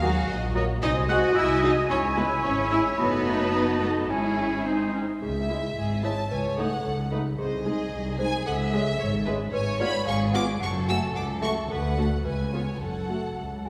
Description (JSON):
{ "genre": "cinematic, playful, whimsical film cue", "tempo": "111 BPM", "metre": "2/4", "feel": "straight", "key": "C# minor, F# minor from 9.5 s", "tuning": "A4 = 439 Hz", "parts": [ { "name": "rich chamber violin section", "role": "melody", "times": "0.0-13.7 s", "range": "B#4 to E6", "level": "-36 LUFS", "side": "equal", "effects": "none" }, { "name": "worn celesta", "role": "melody", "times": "0.0-13.7 s", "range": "G#4 to F#6", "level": "-34 LUFS", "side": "equal", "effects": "none" }, { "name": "bright flute section", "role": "second line", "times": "0.0-4.9 s", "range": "G#5 to Bb5", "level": "-36 LUFS", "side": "equal", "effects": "none" }, { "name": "clear oboe", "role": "second line", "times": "0.0-4.9 s", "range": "B#4 to E5", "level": "-36 LUFS", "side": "equal", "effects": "none" }, { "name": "warm chamber violin section", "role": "second line", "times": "0.0-13.6 s", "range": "Gb4 to F#5", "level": "-36 LUFS", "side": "equal", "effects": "none" }, { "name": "warm clarinet", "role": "second line", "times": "0.0-5.1 s", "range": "C#4 to Gb4", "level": "-34 LUFS", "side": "equal", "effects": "none" }, { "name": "dark studio viola section", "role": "accompaniment", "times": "0.0-13.7 s", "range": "G#3 to G#4", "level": "-34 LUFS", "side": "equal", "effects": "none" }, { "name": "warm French horn section", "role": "sustained chords", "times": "0.0-13.7 s", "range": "G#3 to F#4", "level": "-37 LUFS", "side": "equal", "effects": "none" }, { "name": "warm studio cello section", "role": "bass", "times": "0.0-13.7 s", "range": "B#1 to F#4", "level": "-32 LUFS", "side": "equal", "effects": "none" }, { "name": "warm studio double bass section", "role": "bass", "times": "0.0-13.7 s", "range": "F#1 to Eb2", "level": "-34 LUFS", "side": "equal", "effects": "none" } ], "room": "wet scoring stage reverb, RT60 1.9 s", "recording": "heard from further back in the room", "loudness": "-26 LUFS", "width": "mono", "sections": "0.0-5.2 A section; 5.2-13.7 B section", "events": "none", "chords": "0.0 Ebm; 0.8 G#7/B#; 1.9 C#m; 3.0 D#dim/F#; 4.1 C#m/G#; 4.7 G#; 5.2 C#m; 6.3 D#m7b5/C#; 7.4 G#/B#; 8.5 C#m; 9.5 C#7/G#; 10.6 F#m; 11.7 D; 12.3 C#7; 12.8 F#m", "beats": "0.29 | 0.82 1.36 | 1.90 2.44 | 2.99 3.53 | 4.09 4.66 | 5.22 5.76 | 6.30 6.84 | 7.38 7.92 | 8.46 9.00 | 9.53 10.07 | 10.61 11.15 | 11.70 12.25 | 12.81 13.37" }